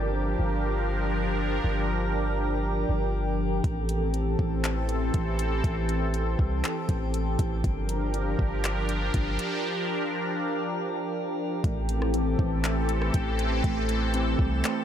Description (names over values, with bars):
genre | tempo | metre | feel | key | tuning
hip hop, atmospheric cloud-rap | 120 BPM | 4/4 | half-time | unclear | A4 = 440 Hz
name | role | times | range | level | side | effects
sweeping resonant pad | sustained chords | 0.0-14.8 s | E3 to Bb4 | -28 LUFS | equal | chorus
long sustained 808-style bass | bass | 0.0-14.6 s | G1 to C2 | -28 LUFS | equal | none
drifting glass-harmonics texture | texture | 0.0-14.8 s | G4 to Bb5 | -39 LUFS | right 1 dB | chorus, built-in reverb
smooth R&B drum kit | drums | 3.6-14.8 s | handclaps, hi-hat, kick drum, rim click | -29 LUFS | equal | none
muted felt-like synth keys | arpeggios | 11.6-14.8 s | A3 to G5 | -32 LUFS | equal | chorus, digital delay
room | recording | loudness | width
digital ambience | none | -25 LUFS | side -9 dB against mid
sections
0.0-11.6 A section; 11.6-14.8 B section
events
none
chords
0.0 Gm7; 3.6 Am7; 7.6 Gm7; 11.6 Am7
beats
0.14 0.64 1.14 | 1.64 2.14 2.64 3.14 | 3.64 4.14 4.64 5.14 | 5.64 6.14 6.64 7.14 | 7.64 8.14 8.64 9.14 | 9.64 10.14 10.64 11.14 | 11.64 12.14 12.64 13.14 | 13.64 14.14 14.64